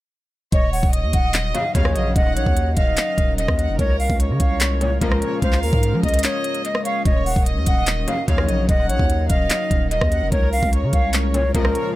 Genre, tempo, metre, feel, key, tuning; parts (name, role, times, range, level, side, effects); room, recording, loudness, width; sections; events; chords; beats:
hip hop, trap; 147 BPM; 4/4; half-time; Eb dorian; A4 = 440 Hz
reedy concert flute; melody; 0.5-11.9 s; Bb4 to Gb5; -24 LUFS; equal; dub echo
warm studio violin section; second line; 0.5-11.9 s; Bb4 to Gb5; -28 LUFS; right 2 dB; dub echo
dark analog pad; sustained chords; 1.0-12.0 s; Gb3 to Bb4; -29 LUFS; left 2 dB; chorus
long sustained 808-style bass; bass; 0.5-11.7 s; Eb1 to F3; -22 LUFS; equal
trap drum kit; drums; 0.5-11.8 s; handclaps, hi-hat, kick drum, rim click; -20 LUFS; equal
sync-sweep polysynth; stabs; 1.5-2.1, 4.8-5.4, 8.1-8.7, 11.3-11.9 s; Bb1 to F3; -29 LUFS; left 3 dB; chorus, dub echo
little or no reverb; echo-heavy mix; -17 LUFS; side -16 dB against mid
0.5-12.0 A section
break 6.2-7.1
0.5 Ebm7; 3.8 Db6; 7.1 Ebm7; 10.3 Db6
| 0.53 0.93 1.34 1.75 | 2.16 2.57 2.97 3.38 | 3.79 4.20 4.61 5.01 | 5.42 5.83 6.24 6.65 | 7.05 7.46 7.87 8.28 | 8.69 9.10 9.50 9.91 | 10.32 10.73 11.14 11.54 | 11.95